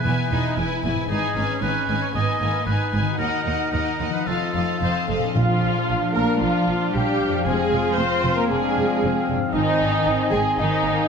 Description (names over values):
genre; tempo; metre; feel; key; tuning
cinematic; 115 BPM; 4/4; straight; Bb mixolydian from 5.4 s; A4 = 441 Hz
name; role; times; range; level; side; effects
rich symphonic violin section; melody; 0.0-11.1 s; Eb4 to G#5; -29 LUFS; left 4 dB; none
clear oboe; second line; 0.0-11.1 s; Ab4 to F5; -30 LUFS; right 1 dB; none
warm symphonic violin section; second line; 0.0-11.1 s; Bb3 to Eb5; -31 LUFS; left 2 dB; none
rich symphonic viola section; accompaniment; 0.0-11.1 s; Bb3 to C5; -26 LUFS; right 1 dB; none
concert harp; arpeggios; 0.0-11.1 s; F2 to E5; -31 LUFS; left 9 dB; none
rich symphonic cello section; bass; 0.1-11.1 s; Eb2 to C4; -28 LUFS; right 2 dB; none
rich symphonic double bass section; bass; 0.1-10.9 s; E1 to Eb2; -28 LUFS; right 4 dB; none
clear clarinet; second line; 5.4-11.1 s; C4 to D4; -31 LUFS; left 5 dB; none
mellow hollow silver concert flute; second line; 5.4-11.1 s; Eb5 to C6; -30 LUFS; right 1 dB; none
warm French horn section; sustained chords; 5.4-11.1 s; Eb3 to D4; -28 LUFS; left 5 dB; none
dark trumpet; stabs; 5.4-11.1 s; F5 to Ab5; -30 LUFS; right 4 dB; none
timpani; percussion; 5.4-6.1 s; Bb2; -26 LUFS; right 3 dB; none
room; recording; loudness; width
moderate scoring stage reverb, RT60 1.6 s; none; -19 LUFS; side -6 dB against mid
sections
0.0-5.4 A section; 5.4-11.1 B section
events
none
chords
0.0 E; 1.1 Abm; 3.2 Ebm; 4.3 F7; 5.4 Bb; 7.5 Fm; 9.5 Ab